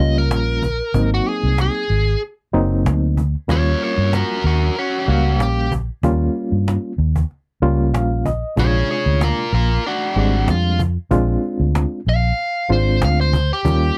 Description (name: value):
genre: straight-eighth soul blues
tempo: 94 BPM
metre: 4/4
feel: swing 53% on 16ths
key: unclear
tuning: A4 = 440 Hz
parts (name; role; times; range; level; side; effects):
- biting overdriven guitar; melody; 0.0-14.0 s; Db4 to F5; -24 LUFS; equal; none
- barky reed electric piano; accompaniment; 0.0-14.0 s; C3 to F5; -24 LUFS; equal; overdrive, tremolo
- vintage muted fingered electric bass; bass; 0.0-13.9 s; Gb1 to G2; -20 LUFS; equal; tube saturation
- cajon; drums; 0.3-13.8 s; none; -27 LUFS; equal; none
room: little or no reverb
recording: dry, close 1970s-style studio recording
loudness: -19 LUFS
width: mono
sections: 0.0-14.0 A section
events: overdriven electric guitar solo 0.0-14.0; reed electric piano fill 7.6-8.6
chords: 0.0 Eb7 (rootless); 0.9 Ab7; 3.5 Eb7; 8.6 Bb7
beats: 0.31 | 0.95 1.58 2.22 2.86 | 3.49 4.13 4.76 5.40 | 6.03 6.67 7.30 7.94 | 8.57 9.21 9.85 10.48 | 11.12 11.75 12.38 13.02 | 13.65